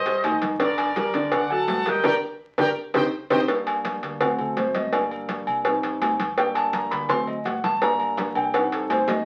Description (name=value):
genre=latin, salsa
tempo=166 BPM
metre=4/4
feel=straight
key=G harmonic minor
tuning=A4 = 442 Hz
part: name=bright trumpet section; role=melody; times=0.0-3.4 s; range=Bb4 to A5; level=-29 LUFS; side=equal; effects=none
part: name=hollow-body short-scale fingered electric bass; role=bass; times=0.0-9.2 s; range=G1 to D2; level=-48 LUFS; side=equal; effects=none
part: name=dark baby grand piano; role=accompaniment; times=0.1-9.2 s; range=D3 to C6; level=-28 LUFS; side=equal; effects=none
part: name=congas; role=percussion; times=0.1-9.2 s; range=none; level=-38 LUFS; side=equal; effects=none
part: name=cowbell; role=percussion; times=0.1-9.2 s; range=none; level=-29 LUFS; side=equal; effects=none
part: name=timbales and agogo bells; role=percussion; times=0.2-9.2 s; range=none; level=-29 LUFS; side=equal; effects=none
room=wet studio reverb, RT60 0.6 s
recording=very old 78 rpm record, vinyl crackle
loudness=-24 LUFS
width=mono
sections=0.0-3.5 A section; 3.5-9.2 B section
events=band accent 2.0-3.5; drum fill 2.4-3.5, 8.2-9.2; grand piano solo 3.5-9.2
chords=0.0 Cm; 0.6 Gm; 1.3 D; 2.0 Gm; 2.8 Cm; 3.5 Gm; 4.2 D7; 4.9 Gm; 5.7 Cm; 6.4 Gm; 7.1 D7; 7.8 Gm; 8.5 Cm